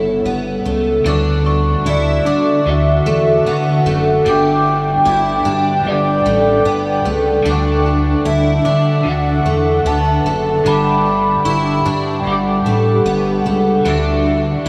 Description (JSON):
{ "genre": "dream pop", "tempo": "75 BPM", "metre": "4/4", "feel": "straight", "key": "D major", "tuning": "A4 = 439 Hz", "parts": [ { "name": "warbly nostalgic lead", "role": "melody", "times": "0.0-14.7 s", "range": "C#5 to B5", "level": "-21 LUFS", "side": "equal", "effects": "chorus, diffuse ambient delay" }, { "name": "ethereal airy pad", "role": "sustained chords", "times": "0.0-14.7 s", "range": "C#3 to A5", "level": "-23 LUFS", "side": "equal", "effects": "ensemble chorus, built-in reverb" }, { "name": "picked twelve-string acoustic guitar", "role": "arpeggios", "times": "0.0-14.7 s", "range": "A3 to E4", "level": "-21 LUFS", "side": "equal", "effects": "analog chorus, diffuse ambient delay" }, { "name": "fat analog bass", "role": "bass", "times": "0.0-14.7 s", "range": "F#1 to D3", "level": "-21 LUFS", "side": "equal", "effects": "none" }, { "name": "clean electric guitar", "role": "accompaniment", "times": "1.0-14.7 s", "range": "G2 to G4", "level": "-24 LUFS", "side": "equal", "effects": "tremolo, lush chorus" }, { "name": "glockenspiel with soft plastic mallets", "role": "texture", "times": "1.5-13.4 s", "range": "C#6 to D6", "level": "-32 LUFS", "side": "equal", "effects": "diffuse ambient delay" } ], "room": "wet huge ambient reverb, RT60 7.4 s", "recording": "dreamy mix soaked in reverb, small room ambience", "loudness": "-15 LUFS", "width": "mono", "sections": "0.0-1.1 A section; 1.1-14.7 B section", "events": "none", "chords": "0.0 A7; 1.1 Dadd9; 4.3 G; 7.5 Dadd9; 10.7 G; 13.9 Dadd9" }